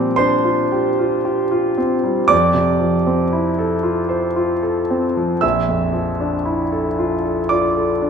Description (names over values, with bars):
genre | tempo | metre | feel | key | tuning
classical, impressionist solo piano | 58 BPM | 3/4 | rubato | unclear | A4 = 437 Hz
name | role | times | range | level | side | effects
warm concert grand piano | solo | 0.0-8.1 s | Bb1 to E6 | -16 LUFS | equal | none
room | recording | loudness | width
moderate recital hall reverb, RT60 1.4 s | none | -16 LUFS | side -6 dB against mid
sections
0.0-8.1 A section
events
none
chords
0.0 Bb69; 2.3 Fmaj7; 5.4 Bbmaj7#11